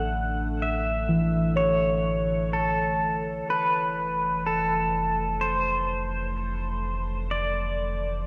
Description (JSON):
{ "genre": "ambient", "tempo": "63 BPM", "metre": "4/4", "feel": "straight", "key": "unclear", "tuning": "A4 = 440 Hz", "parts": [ { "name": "pedal steel guitar", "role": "melody", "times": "0.0-8.2 s", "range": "A4 to F#5", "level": "-29 LUFS", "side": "equal", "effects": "tape echo" }, { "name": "muted felt-like synth keys", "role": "arpeggios", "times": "0.0-8.3 s", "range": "E3 to C#5", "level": "-31 LUFS", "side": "equal", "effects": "chorus, tape echo" }, { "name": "warm sub bass", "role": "bass", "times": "0.0-8.3 s", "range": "F1 to A1", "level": "-34 LUFS", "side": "equal", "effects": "none" }, { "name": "analog drone", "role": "drone", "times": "0.0-8.3 s", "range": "D3 to A3", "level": "-42 LUFS", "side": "equal", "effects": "chorus" } ], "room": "wet lush hall reverb, RT60 2.9 s", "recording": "worn, warbling old tape, cassette tape, warbly pitch drift", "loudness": "-26 LUFS", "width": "mono", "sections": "0.0-8.3 A section", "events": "fade-out on synth drone 0.0-8.3", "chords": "0.0 A; 3.5 F6", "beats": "0.61 1.56 2.52 | 3.47 4.42 5.37 6.32 | 7.28 8.23" }